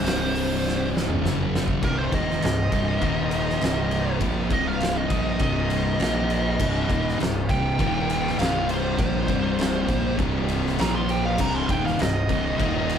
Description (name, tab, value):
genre	stoner and doom metal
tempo	100 BPM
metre	4/4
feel	straight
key	C minor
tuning	A4 = 443 Hz
part	fuzz lead guitar	melody	0.0-13.0 s	Bb4 to C6	-28 LUFS	right 2 dB	wah, distortion
part	tonewheel organ	sustained chords	0.0-13.0 s	none	barely audible	none	none
part	thick fuzz guitar	riff	0.0-13.0 s	C2 to Bb3	-27 LUFS	left 6 dB	distortion
part	thick fuzz guitar	riff	0.0-13.0 s	C2 to Bb3	-28 LUFS	right 5 dB	distortion
part	fuzz fingered electric bass	bass	0.0-13.0 s	C1 to Bb1	-31 LUFS	equal	overdrive
part	oversized low-tuned drum kit	drums	0.1-13.0 s	crash cymbal, hi-hat, kick drum, ride cymbal, snare drum, toms	-26 LUFS	equal	none
room	moderate large studio reverb, RT60 1.2 s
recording	band playing live in one room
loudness	-21 LUFS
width	side -8 dB against mid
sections	0.0-1.8 A section; 1.8-13.0 B section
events	drum fill 0.6-1.8; lead electric guitar solo 1.8-13.0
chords	0.0 C5; 1.2 F#5; 1.8 Cm; 3.0 Eb5; 3.6 Cm; 6.0 Bb5; 6.6 Cm; 7.8 Eb5; 8.4 C5; 10.8 Bb5; 11.4 Cm